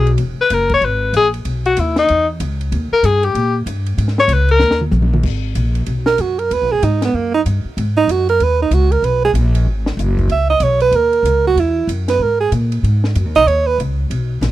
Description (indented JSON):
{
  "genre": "jazz, small-group swing and bop",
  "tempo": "190 BPM",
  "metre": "4/4",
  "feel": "swing 63% on 8ths",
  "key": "G# minor",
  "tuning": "A4 = 440 Hz",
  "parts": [
    { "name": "clear tenor saxophone", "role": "melody", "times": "0.0-4.8 s", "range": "D#4 to C#5", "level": "-14 LUFS", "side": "left 3 dB", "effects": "none" },
    { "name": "upright bass", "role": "bass", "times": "0.0-14.5 s", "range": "E1 to A#2", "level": "-17 LUFS", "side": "equal", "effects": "none" },
    { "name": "compact cocktail drum kit", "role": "drums", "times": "0.1-14.5 s", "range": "crash cymbal, hi-hat, kick drum, ride cymbal, snare drum, toms", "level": "-26 LUFS", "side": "left 1 dB", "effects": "none" },
    { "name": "clear alto saxophone", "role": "second line", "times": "6.1-13.8 s", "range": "A#3 to E5", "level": "-14 LUFS", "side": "right 5 dB", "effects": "none" }
  ],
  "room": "little or no reverb",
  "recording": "dry, close 1970s-style studio recording",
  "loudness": "-13 LUFS",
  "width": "side -14 dB against mid",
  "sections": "0.0-5.2 A section; 5.2-14.5 A section",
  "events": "tenor saxophone solo 0.0-5.2; drum fill 4.6-5.2; alto saxophone solo 5.2-14.5",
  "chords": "0.2 Emaj7; 2.7 D#; 4.0 A#m7 (rootless); 4.6 D#5; 5.2 G#m7; 10.3 C#m7; 12.8 G#m"
}